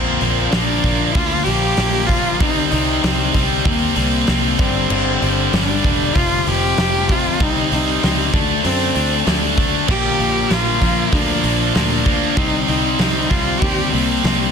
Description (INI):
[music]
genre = quiet-loud alternative rock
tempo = 96 BPM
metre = 4/4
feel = straight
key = unclear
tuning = A4 = 439 Hz
[part]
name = rich cello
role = melody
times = 0.0-14.5 s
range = Bb3 to G4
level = -22 LUFS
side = equal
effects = none
[part]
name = cranked stack guitar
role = riff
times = 0.0-14.5 s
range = F2 to D4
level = -22 LUFS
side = left 15 dB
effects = overdrive
[part]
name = heavy high-gain guitar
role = riff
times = 0.0-14.5 s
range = F2 to D4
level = -21 LUFS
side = right 15 dB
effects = distortion
[part]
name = picked electric bass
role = bass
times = 0.0-14.5 s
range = E1 to F#2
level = -23 LUFS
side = equal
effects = none
[part]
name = big rock drum kit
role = drums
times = 0.2-14.4 s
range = crash cymbal, hi-hat, kick drum, snare drum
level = -20 LUFS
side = equal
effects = none
[part]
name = scooped high-gain guitar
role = riff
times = 9.9-14.5 s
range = Bb2 to C4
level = -24 LUFS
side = equal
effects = distortion
[sound]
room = light reverb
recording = dense, heavily limited modern master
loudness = -14 LUFS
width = side -6 dB against mid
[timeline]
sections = 0.0-14.5 A section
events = none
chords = 0.0 Bbadd9; 2.4 Cm7; 4.6 G5; 6.1 F5; 7.4 Cm; 8.3 D7; 9.9 Bb; 12.4 Cm7